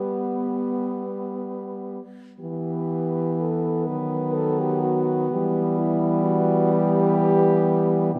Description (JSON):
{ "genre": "classical, lyrical piece for horn quartet", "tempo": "35-43 BPM (dotted quarters)", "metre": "6/8", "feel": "rubato", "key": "E minor", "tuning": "A4 = 440 Hz", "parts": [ { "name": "mellow French horn", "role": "melody", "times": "0.0-8.2 s", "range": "E4 to B4", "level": "-28 LUFS", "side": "equal", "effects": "none" }, { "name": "mellow French horn", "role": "second line", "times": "0.0-8.2 s", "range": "F#3 to B3", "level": "-28 LUFS", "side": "equal", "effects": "none" }, { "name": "warm French horn", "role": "accompaniment", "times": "0.0-8.2 s", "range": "B3 to D4", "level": "-30 LUFS", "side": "equal", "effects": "none" }, { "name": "warm French horn", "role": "bass", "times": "0.0-8.2 s", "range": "B2 to G3", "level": "-28 LUFS", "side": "equal", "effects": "none" } ], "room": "moderate concert hall reverb, RT60 2.5 s", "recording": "none", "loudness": "-23 LUFS", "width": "mono", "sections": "0.0-2.4 A section; 2.4-8.2 B section", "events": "none", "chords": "0.0 G; 2.4 Em; 3.9 B/D#; 5.3 Em" }